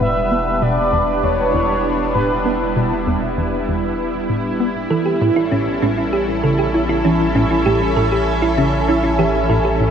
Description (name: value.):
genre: ambient, sequencer-driven space music.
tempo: 98 BPM.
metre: 4/4.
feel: straight.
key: E dorian.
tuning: A4 = 445 Hz.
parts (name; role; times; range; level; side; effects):
expressive synth lead; melody; 0.0-2.7 s; B4 to E5; -21 LUFS; equal; chorus, ping-pong delay.
lush unison pad; sustained chords; 0.0-9.9 s; G3 to E5; -19 LUFS; right 1 dB; chorus, phaser.
tight sequencer bass; riff; 0.0-9.9 s; E2 to E4; -21 LUFS; left 1 dB; analog chorus, ping-pong delay.
round analog bass; bass; 0.0-9.9 s; E1 to A1; -25 LUFS; equal; none.
thumb-piano-like synth pluck; arpeggios; 4.9-9.7 s; C#4 to A4; -20 LUFS; right 2 dB; chorus, auto-pan, ping-pong delay.
room: wet lush hall reverb, RT60 3.1 s.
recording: dreamy mix soaked in reverb.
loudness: -15 LUFS.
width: side -8 dB against mid.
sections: 0.0-9.9 A section.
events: none.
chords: 0.0 Em; 4.9 A7.